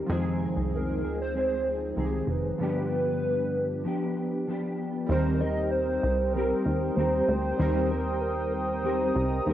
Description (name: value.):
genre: indie pop.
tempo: 96 BPM.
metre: 4/4.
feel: straight.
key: Eb major.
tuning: A4 = 440 Hz.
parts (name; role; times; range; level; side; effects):
mellow electric guitar; accompaniment; 0.0-9.5 s; F2 to Bb4; -30 LUFS; left 2 dB; ensemble chorus, warbly pitch drift, cassette tape.
warm analog keys; accompaniment; 0.0-9.5 s; F3 to Bb4; -35 LUFS; right 4 dB; chorus, phaser, cassette tape.
plucky analog bass; bass; 0.0-9.5 s; F1 to F2; -30 LUFS; equal; none.
warbly nostalgic lead; melody; 0.8-9.5 s; Bb4 to Eb5; -30 LUFS; right 1 dB; analog chorus, cassette tape, tape echo.
warm analog pad; sustained chords; 5.1-9.5 s; C5 to Eb6; -34 LUFS; right 1 dB; chorus, cassette tape.
room: moderate spring reverb, RT60 1.9 s, digital ambience.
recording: home recording on cassette.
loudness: -25 LUFS.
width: side -12 dB against mid.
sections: 0.0-5.1 A section; 5.1-9.5 B section.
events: none.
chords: 0.1 Fm7; 2.6 G7; 5.1 Eb6.